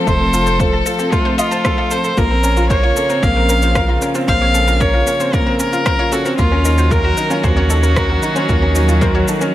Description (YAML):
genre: piano and strings electronica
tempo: 114 BPM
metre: 4/4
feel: straight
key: Bb harmonic minor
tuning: A4 = 443 Hz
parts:
  - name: warm chamber string section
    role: sustained chords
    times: 0.0-9.5 s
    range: Db3 to A4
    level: -23 LUFS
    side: left 1 dB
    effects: sidechain pumping
  - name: warm upright piano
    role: riff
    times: 0.0-9.5 s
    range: A3 to F5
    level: -19 LUFS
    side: equal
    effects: ping-pong delay
  - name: clear viola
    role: melody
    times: 0.1-9.5 s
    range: F4 to F5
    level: -18 LUFS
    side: equal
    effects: ping-pong delay
  - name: analog pluck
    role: arpeggios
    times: 0.1-9.5 s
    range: F4 to Bb5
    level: -26 LUFS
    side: left 3 dB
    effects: chorus, sidechain pumping, ping-pong delay
  - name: round analog bass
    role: bass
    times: 0.1-9.2 s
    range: F1 to Eb2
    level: -16 LUFS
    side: equal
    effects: sidechain pumping
  - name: electronic kick drum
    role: drums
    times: 0.1-9.1 s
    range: none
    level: -19 LUFS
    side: equal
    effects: overdrive
  - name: electronic shaker and rim click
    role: drums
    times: 0.1-9.5 s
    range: none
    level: -25 LUFS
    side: equal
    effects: overdrive
room: light reverb, studio reverb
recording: none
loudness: -12 LUFS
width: side -13 dB against mid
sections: 0.0-9.5 A section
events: none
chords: 0.0 F; 2.2 Bbmadd9; 6.4 Ebm7